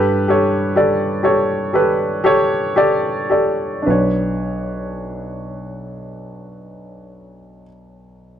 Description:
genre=pop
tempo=53-65 BPM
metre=4/4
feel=straight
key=B minor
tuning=A4 = 440 Hz
part: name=warm baby grand piano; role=accompaniment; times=0.0-8.4 s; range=B1 to D5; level=-16 LUFS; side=equal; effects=none
room=light reverb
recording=dry, close 1970s-style studio recording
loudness=-15 LUFS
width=side -9 dB against mid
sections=0.0-3.9 A section; 3.9-8.4 B section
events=slowing down 0.0-3.9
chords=0.0 Gadd9; 3.9 Bmadd9

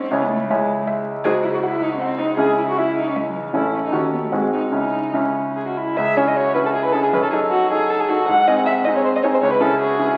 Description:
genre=quick classical-period movement for piano trio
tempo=157 BPM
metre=3/4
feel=rubato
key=C# minor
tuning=A4 = 440 Hz
part: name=dark violin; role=melody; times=0.0-10.2 s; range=E4 to F#5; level=-23 LUFS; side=equal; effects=none
part: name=dark cello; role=second line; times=0.0-10.2 s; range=E3 to G#4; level=-27 LUFS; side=equal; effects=none
part: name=clear concert grand piano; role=accompaniment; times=0.0-10.2 s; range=A1 to C#5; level=-22 LUFS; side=equal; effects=none
room=moderate scoring stage reverb, RT60 1.9 s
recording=very old 78 rpm record, vinyl crackle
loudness=-19 LUFS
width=mono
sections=0.0-6.0 A section; 6.0-10.2 A section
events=none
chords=0.1 C#m; 1.3 G#7b13 (rootless); 2.4 C#m; 3.5 A; 3.9 D#m7b5; 4.3 G#7; 4.7 C#m; 7.1 D#dim/F#; 8.3 G#; 9.4 C#m

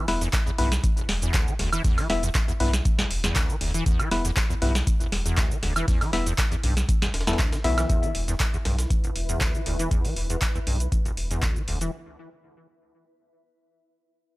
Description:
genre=acid house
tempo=119 BPM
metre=4/4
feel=straight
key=E minor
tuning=A4 = 440 Hz
part: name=liquid acid bass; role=riff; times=0.0-11.9 s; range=E1 to E3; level=-30 LUFS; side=equal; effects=tube saturation, ensemble chorus, analog delay
part: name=percussive organ stab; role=stabs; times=0.0-8.1 s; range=B3 to E5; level=-29 LUFS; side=left 2 dB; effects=chorus, analog delay
part: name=round analog bass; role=bass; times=0.1-11.9 s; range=E1 to B1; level=-27 LUFS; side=equal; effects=sidechain pumping
part: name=booming analog drum machine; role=drums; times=0.1-11.9 s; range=handclaps, hi-hat, shaker, snare drum, woodblock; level=-29 LUFS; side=equal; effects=none
part: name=breakbeat sampler-style drum kit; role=drums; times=0.1-9.8 s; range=hi-hat, snare drum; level=-40 LUFS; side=equal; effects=none
part: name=electronic kick drum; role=drums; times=0.3-11.5 s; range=none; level=-25 LUFS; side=equal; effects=none
part: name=granular cloud pad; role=texture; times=8.7-11.9 s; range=E4 to E5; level=-38 LUFS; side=equal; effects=built-in reverb, sidechain pumping
room=little or no reverb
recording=dry, gritty hardware recording, transformer saturation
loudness=-22 LUFS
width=side -20 dB against mid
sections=0.0-7.9 A section; 7.9-11.9 B section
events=drop 0.0-7.9; fade-out on ambient pad 7.9-11.9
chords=0.0 E5

